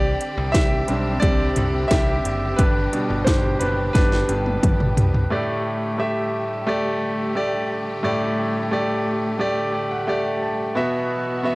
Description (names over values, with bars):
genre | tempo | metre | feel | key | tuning
piano-driven pop | 88 BPM | 4/4 | straight | unclear | A4 = 440 Hz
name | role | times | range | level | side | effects
bright concert grand piano | accompaniment | 0.0-11.6 s | A2 to A5 | -22 LUFS | equal | cassette tape
rich studio string section | sustained chords | 0.0-11.6 s | B2 to G4 | -30 LUFS | left 1 dB | cassette tape
modern bright picked electric bass | bass | 0.0-5.3 s | F#1 to C2 | -25 LUFS | equal | none
house drum kit | drums | 0.2-5.3 s | hi-hat, kick drum, snare drum, toms | -20 LUFS | equal | overdrive
room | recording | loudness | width
light reverb | home recording on cassette | -19 LUFS | side -24 dB against mid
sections
0.0-5.3 A section; 5.3-11.6 B section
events
grand piano solo 0.0-5.3; drum fill 4.0-5.3; grand piano fill 9.4-10.8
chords
0.0 Csus2; 5.3 Dsus4; 10.8 Esus2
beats
0.54 1.23 1.91 | 2.59 3.27 3.95 4.63 | 5.31 5.99 6.68 7.36 | 8.04 8.72 9.40 10.08 | 10.77 11.45